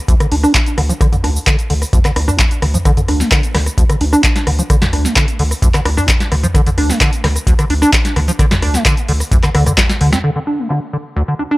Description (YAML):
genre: acid house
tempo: 130 BPM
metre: 4/4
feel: straight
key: D minor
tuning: A4 = 440 Hz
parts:
  - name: acid bass, square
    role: riff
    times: 0.1-11.6 s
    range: D2 to D4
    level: -16 LUFS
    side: equal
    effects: analog chorus, cassette tape, analog delay
  - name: booming analog drum machine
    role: drums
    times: 0.1-11.4 s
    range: crash cymbal, handclaps, hi-hat, rim click, shaker, snare drum, toms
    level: -17 LUFS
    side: equal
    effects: overdrive, low-pass filter on hats, low-pass filter on perc, low-pass filter on snare, low-pass filter on toms, low-pass filter on cymbals
  - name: electronic kick drum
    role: drums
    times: 0.1-9.9 s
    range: none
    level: -14 LUFS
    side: equal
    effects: overdrive
  - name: round analog bass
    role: bass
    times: 0.3-10.2 s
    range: D2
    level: -16 LUFS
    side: equal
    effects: sidechain pumping
room: digital ambience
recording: dry, gritty hardware recording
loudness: -11 LUFS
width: side -19 dB against mid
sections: 0.0-10.2 A section; 10.2-11.6 B section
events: drum fill 9.8-10.2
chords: none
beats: 0.08 0.55 | 1.01 1.47 1.93 2.39 | 2.85 3.31 3.78 4.24 | 4.70 5.16 5.62 6.08 | 6.55 7.01 7.47 7.93 | 8.39 8.85 9.31 9.78 | 10.24 10.70 11.16